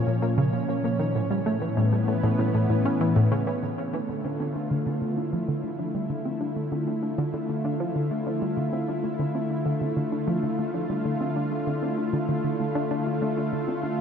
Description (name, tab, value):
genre	ambient, sequencer-driven space music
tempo	97 BPM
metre	4/4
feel	straight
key	D dorian from 3.6 s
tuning	A4 = 440 Hz
part	lush unison pad	sustained chords	0.0-14.0 s	A2 to F4	-26 LUFS	equal	chorus
part	tight sequenced synth	riff	0.0-14.0 s	A2 to F4	-27 LUFS	equal	chorus, cassette tape, tape echo
part	pulsing gated texture	texture	0.0-3.6 s	Db5	-38 LUFS	right 2 dB	chorus, built-in reverb
room	wet huge ambient reverb, RT60 8.4 s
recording	dreamy mix soaked in reverb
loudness	-24 LUFS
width	side -7 dB against mid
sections	0.0-3.6 A section; 3.6-14.0 B section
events	none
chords	0.0 Bbm; 1.2 A; 3.6 Dm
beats	0.53 | 1.15 1.77 2.39 3.01 | 3.63 4.25 4.86 5.48 | 6.10 6.72 7.34 7.96 | 8.57 9.19 9.81 10.43 | 11.05 11.67 12.29 12.90 | 13.52